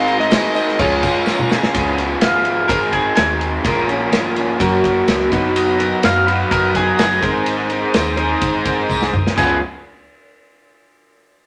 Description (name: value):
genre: folk rock and heartland rock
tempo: 126 BPM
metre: 4/4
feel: straight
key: unclear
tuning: A4 = 443 Hz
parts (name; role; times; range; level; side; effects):
- electric slide guitar; melody; 0.0-1.5 s; Db5 to F5; -22 LUFS; equal; none
- dark baby grand piano; accompaniment; 0.0-9.6 s; Cb4 to Db5; -35 LUFS; equal; none
- picked twelve-string acoustic guitar; accompaniment; 0.0-9.6 s; Bb2 to Bb4; -26 LUFS; equal; none
- bright tonewheel organ; sustained chords; 0.0-1.7, 5.5-9.6 s; Db4 to Eb6; -28 LUFS; equal; slow rotary speaker
- raw garage guitar; riff; 0.0-9.6 s; Ab2 to C5; -21 LUFS; equal; overdrive
- hollow-body short-scale fingered electric bass; bass; 0.0-9.6 s; Gb1 to Gb2; -30 LUFS; equal; none
- natural country drum kit; drums; 0.1-9.5 s; crash cymbal, kick drum, ride cymbal, snare drum, toms; -23 LUFS; equal; none
- tambourine; percussion; 0.1-1.6, 6.0-9.6 s; none; -36 LUFS; equal; none
- bowl-back mandolin; second line; 2.2-9.6 s; Ab4 to F5; -21 LUFS; equal; none
room: moderate studio reverb, RT60 0.8 s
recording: none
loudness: -17 LUFS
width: mono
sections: 0.0-1.7 A section; 1.7-9.4 B section; 9.4-11.3 C section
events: drum fill 1.3-1.7, 8.9-9.4; mandolin solo 1.7-9.4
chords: 0.0 Abadd9; 0.8 Db6; 1.7 Db7; 2.7 Abadd9; 3.7 Bbm7; 4.6 Gb; 5.3 Cbmaj7/Gb; 7.2 Abadd9; 9.4 Db7